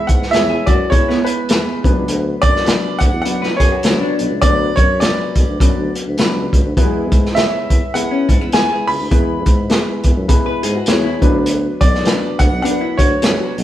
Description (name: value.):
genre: uptempo 1960s-style soul.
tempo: 102 BPM.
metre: 4/4.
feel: swing 59% on 8ths.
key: E mixolydian.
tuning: A4 = 441 Hz.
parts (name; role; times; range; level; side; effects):
bright grand piano; melody; 0.0-13.5 s; B4 to B5; -19 LUFS; right 1 dB; none.
dark upright piano; accompaniment; 0.0-13.6 s; F#3 to D5; -22 LUFS; left 2 dB; none.
mellow tonewheel organ; sustained chords; 0.0-13.6 s; F#3 to B4; -28 LUFS; equal; none.
vintage hollow-body jazz guitar; riff; 0.0-13.6 s; B3 to B4; -22 LUFS; left 2 dB; none.
warm tuba; bass; 0.1-13.6 s; B1 to G#2; -22 LUFS; equal; none.
crunchy breakbeat drum kit; drums; 0.1-13.6 s; hi-hat, kick drum, snare drum; -15 LUFS; equal; none.
room: moderate stone room reverb, RT60 1.1 s.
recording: band playing live in one room.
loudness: -13 LUFS.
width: side -12 dB against mid.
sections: 0.0-13.6 A section.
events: none.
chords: 0.0 E; 1.8 Bm; 6.8 E; 11.2 Bm.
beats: 0.33 0.91 1.50 | 2.08 2.67 3.25 3.84 | 4.42 5.01 5.60 6.18 | 6.77 7.35 7.94 8.53 | 9.11 9.70 10.29 10.88 | 11.46 12.05 12.64 13.23.